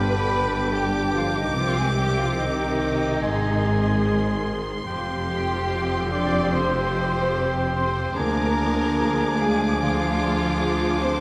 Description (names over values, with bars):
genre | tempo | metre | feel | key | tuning
cinematic, emotional film score for orchestra | 73 BPM | 4/4 | rubato | unclear | A4 = 440 Hz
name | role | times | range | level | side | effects
warm studio violin section | melody | 0.0-11.2 s | C6 to D6 | -35 LUFS | equal | none
clear oboe | second line | 0.0-11.1 s | G5 to Ab5 | -33 LUFS | equal | none
large flute ensemble | second line | 0.0-11.2 s | Eb5 to D6 | -34 LUFS | equal | none
rich studio violin section | second line | 0.0-11.2 s | Eb4 to D5 | -33 LUFS | equal | none
warm clarinet | second line | 0.0-11.2 s | C4 to D4 | -34 LUFS | equal | none
rich studio viola section | accompaniment | 0.0-11.2 s | D3 to Ab4 | -32 LUFS | equal | none
dark French horn section | sustained chords | 0.0-11.2 s | Eb3 to G4 | -32 LUFS | equal | none
concert harp | arpeggios | 0.0-11.2 s | F2 to F5 | -36 LUFS | equal | none
rich studio cello section | bass | 0.0-11.2 s | D2 to C3 | -31 LUFS | equal | none
warm studio double bass section | bass | 0.0-11.2 s | F1 to D2 | -32 LUFS | equal | none
room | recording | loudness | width
wet scoring stage reverb, RT60 1.6 s | none | -23 LUFS | mono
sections
0.0-11.2 A section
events
none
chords
0.0 G; 1.6 Cmadd9; 3.2 Ab; 4.9 Fmadd9; 8.2 Ddim